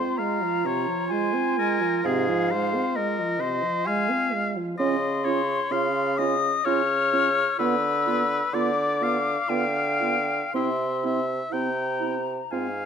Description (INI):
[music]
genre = classical, slow romantic movement for wind quintet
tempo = 55-67 BPM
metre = 3/4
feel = rubato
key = unclear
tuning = A4 = 436 Hz
[part]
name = hollow concert flute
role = melody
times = 0.0-12.9 s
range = Eb5 to F6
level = -27 LUFS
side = left 7 dB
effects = none
[part]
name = clear oboe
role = second line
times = 0.0-12.9 s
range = Ab4 to G5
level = -28 LUFS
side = left 2 dB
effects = none
[part]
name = dark clarinet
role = accompaniment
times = 0.0-12.7 s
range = E4 to F4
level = -31 LUFS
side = right 11 dB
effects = none
[part]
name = mellow French horn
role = accompaniment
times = 0.0-12.7 s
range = C3 to Db4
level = -30 LUFS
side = right 2 dB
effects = none
[part]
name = warm bassoon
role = bass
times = 2.0-12.9 s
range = Ab2 to D3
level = -28 LUFS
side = right 2 dB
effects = none
[sound]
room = moderate recital hall reverb, RT60 1.6 s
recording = close, detailed microphones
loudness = -22 LUFS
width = side -7 dB against mid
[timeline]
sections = 0.0-12.9 A section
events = none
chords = 0.0 Fm; 2.0 Fm/Ab; 4.8 Dbmaj7; 7.6 G7/D; 10.5 C